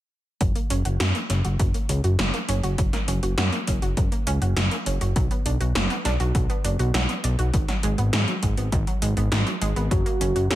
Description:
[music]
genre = synthwave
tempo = 101 BPM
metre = 4/4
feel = straight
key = F# major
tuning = A4 = 442 Hz
[part]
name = analog pluck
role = arpeggios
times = 0.4-10.6 s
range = D#3 to F#4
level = -30 LUFS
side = right 3 dB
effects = chorus, tape echo
[part]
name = fat analog bass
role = bass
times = 0.4-10.6 s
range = F#1 to G#2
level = -23 LUFS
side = equal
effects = sidechain pumping
[part]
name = 80s electronic pad drums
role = drums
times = 0.4-10.6 s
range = hi-hat, snare drum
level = -28 LUFS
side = left 1 dB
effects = overdrive, gated reverb
[part]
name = electronic kick drum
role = drums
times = 0.4-10.0 s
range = none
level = -25 LUFS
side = equal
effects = overdrive
[part]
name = soft octave-layered synth lead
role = melody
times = 9.9-10.6 s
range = F#4 to G#4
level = -25 LUFS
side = right 2 dB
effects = chorus
[sound]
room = little or no reverb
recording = none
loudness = -21 LUFS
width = side -14 dB against mid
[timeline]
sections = 0.4-10.6 A section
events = none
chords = 0.4 F#; 5.2 Bm; 7.5 G#m7; 9.9 F#

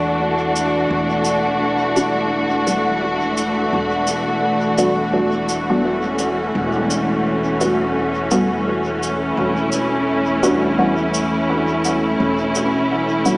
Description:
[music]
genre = ambient dub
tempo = 85 BPM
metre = 4/4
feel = swing 59% on 16ths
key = E dorian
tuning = A4 = 437 Hz
[part]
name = dark studio string section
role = sustained chords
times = 0.0-13.4 s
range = E3 to F#4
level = -18 LUFS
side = equal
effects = low-pass filter
[part]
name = upright bass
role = bass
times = 0.0-13.4 s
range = E1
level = -27 LUFS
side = equal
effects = tube saturation
[part]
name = cabasa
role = drums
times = 0.6-13.4 s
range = none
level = -29 LUFS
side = equal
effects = dub echo
[part]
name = filtered dub chord stab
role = stabs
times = 2.0-13.4 s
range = G3 to F#4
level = -22 LUFS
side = equal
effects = phaser, lush chorus, dub echo
[sound]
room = wet concert hall reverb, RT60 2.3 s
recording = small speaker sound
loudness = -16 LUFS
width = side -24 dB against mid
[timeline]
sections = 0.0-13.4 A section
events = none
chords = 0.0 Em7

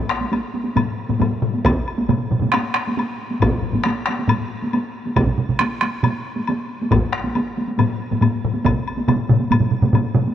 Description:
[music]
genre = japanese traditional, taiko drum ensemble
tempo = 137 BPM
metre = 4/4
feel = straight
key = none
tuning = none
[part]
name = taiko ensemble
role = percussion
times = 0.1-10.2 s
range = none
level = -21 LUFS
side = left 3 dB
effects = none
[part]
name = taiko ensemble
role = percussion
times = 0.2-10.3 s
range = none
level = -23 LUFS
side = right 1 dB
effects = none
[part]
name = woodblock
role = percussion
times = 0.3-10.0 s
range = none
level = -29 LUFS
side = left 4 dB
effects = none
[part]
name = taiko ensemble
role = percussion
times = 1.6-8.7 s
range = none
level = -24 LUFS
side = right 1 dB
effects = none
[part]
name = solo taiko drums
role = percussion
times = 2.1-10.2 s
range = none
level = -20 LUFS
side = right 4 dB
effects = none
[sound]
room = moderate huge ambient reverb, RT60 5.3 s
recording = worn, warbling old tape, cassette tape, warbly pitch drift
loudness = -18 LUFS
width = side -10 dB against mid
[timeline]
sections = 0.0-10.3 A section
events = speeding up 0.0-10.3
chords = none

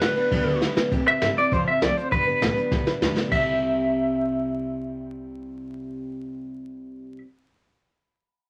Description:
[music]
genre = rockabilly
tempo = 200 BPM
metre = 4/4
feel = straight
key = C major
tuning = A4 = 440 Hz
[part]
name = electric guitar through a small old amp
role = melody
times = 0.0-7.2 s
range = B4 to E5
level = -26 LUFS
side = equal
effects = tremolo
[part]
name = picked steel-string acoustic guitar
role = accompaniment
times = 0.0-7.3 s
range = G2 to B4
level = -30 LUFS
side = equal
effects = none
[part]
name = upright bass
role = bass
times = 0.0-7.2 s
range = G1 to G2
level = -37 LUFS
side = equal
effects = none
[part]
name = jazz brush drum kit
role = drums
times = 0.0-3.4 s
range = crash cymbal, hi-hat, kick drum, ride cymbal, snare drum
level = -28 LUFS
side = equal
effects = none
[sound]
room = moderate studio ambience, RT60 0.4 s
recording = vinyl crackle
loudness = -23 LUFS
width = mono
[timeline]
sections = 0.9-3.3 A section; 3.3-5.7 B section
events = drum fill 0.6-0.9, 2.7-3.3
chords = 0.0 G; 0.9 C; 1.5 F; 2.1 G; 3.3 C

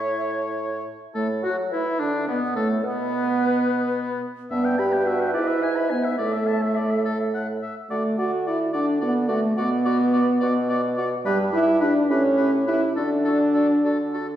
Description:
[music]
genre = quick classical-period movement for wind quintet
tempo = 71 BPM (dotted quarters)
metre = 6/8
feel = straight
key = D major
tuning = A4 = 439 Hz
[part]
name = hollow concert flute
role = melody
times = 0.0-14.2 s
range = D4 to F#5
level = -34 LUFS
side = left 6 dB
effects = none
[part]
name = clear oboe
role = second line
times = 0.0-14.3 s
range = B3 to B5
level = -30 LUFS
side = left 2 dB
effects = none
[part]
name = warm French horn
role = accompaniment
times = 0.0-14.4 s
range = G3 to G4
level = -22 LUFS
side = equal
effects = none
[part]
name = warm clarinet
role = accompaniment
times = 0.0-14.3 s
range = A3 to C#5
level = -30 LUFS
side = right 5 dB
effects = none
[part]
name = warm bassoon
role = bass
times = 0.0-14.4 s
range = G2 to F#3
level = -28 LUFS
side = right 1 dB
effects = none
[sound]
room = wet recital hall reverb, RT60 1.5 s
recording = heard from further back in the room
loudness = -20 LUFS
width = side -11 dB against mid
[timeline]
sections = 0.0-1.2 A section; 1.2-14.4 B section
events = none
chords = 0.0 A; 1.2 D/A; 2.8 N.C.; 4.5 Em/G; 5.4 E/G#; 6.2 Asus4; 7.9 D; 9.6 Bm; 11.3 Em/G; 12.1 A9; 13.0 D

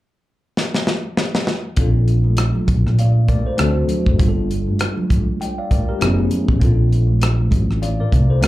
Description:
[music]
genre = lush 1970s-style soul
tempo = 99 BPM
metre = 4/4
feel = swing 58% on 16ths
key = Bb major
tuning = A4 = 436 Hz
[part]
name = tight funk drum kit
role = drums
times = 0.6-8.5 s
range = hi-hat, kick drum, rim click, snare drum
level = -19 LUFS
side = equal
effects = none
[part]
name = tine electric piano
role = accompaniment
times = 1.8-8.5 s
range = G3 to G5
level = -23 LUFS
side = left 2 dB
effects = medium stereo tremolo, slapback echo
[part]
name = hollow-body short-scale fingered electric bass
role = bass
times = 1.8-8.5 s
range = F#1 to Bb2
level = -16 LUFS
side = equal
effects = none
[part]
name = congas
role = percussion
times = 2.1-8.5 s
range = none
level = -27 LUFS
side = right 2 dB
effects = none
[sound]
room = light reverb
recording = live gig heard through the venue's PA, club reverb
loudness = -15 LUFS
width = side -16 dB against mid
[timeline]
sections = 0.0-1.8 A section; 1.8-6.6 B section; 6.6-8.5 C section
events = drum fill 0.6-1.8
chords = 0.0 N.C.; 1.8 Bbmaj9; 3.6 D7; 4.2 Gm7; 6.0 Gbm11; 6.6 Bbmaj9

